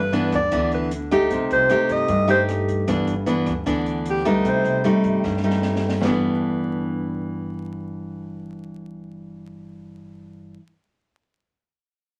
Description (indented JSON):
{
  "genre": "bossa nova",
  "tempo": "153 BPM",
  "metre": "4/4",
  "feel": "straight",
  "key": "G major",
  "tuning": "A4 = 439 Hz",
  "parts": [
    { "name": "breathy alto saxophone", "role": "melody", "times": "0.0-4.9 s", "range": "G4 to Eb5", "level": "-23 LUFS", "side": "equal", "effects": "none" },
    { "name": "nylon-string guitar", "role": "accompaniment", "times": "0.0-10.6 s", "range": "G2 to G4", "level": "-24 LUFS", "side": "equal", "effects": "none" },
    { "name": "upright bass", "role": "bass", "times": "0.0-10.5 s", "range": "G1 to G2", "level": "-35 LUFS", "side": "equal", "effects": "none" },
    { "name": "open jazz drum kit", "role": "drums", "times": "0.1-6.1 s", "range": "hi-hat, kick drum, rim click, snare drum, toms", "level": "-34 LUFS", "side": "equal", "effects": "none" }
  ],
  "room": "wet studio reverb, RT60 0.6 s",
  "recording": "vinyl crackle",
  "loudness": "-21 LUFS",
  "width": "mono",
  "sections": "0.0-6.0 A section; 6.0-9.2 B section",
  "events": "alto saxophone solo 0.0-6.0; drum fill 5.2-6.0",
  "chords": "0.0 G6; 1.3 Cm6; 2.9 G6; 4.4 Cm6; 6.0 G6"
}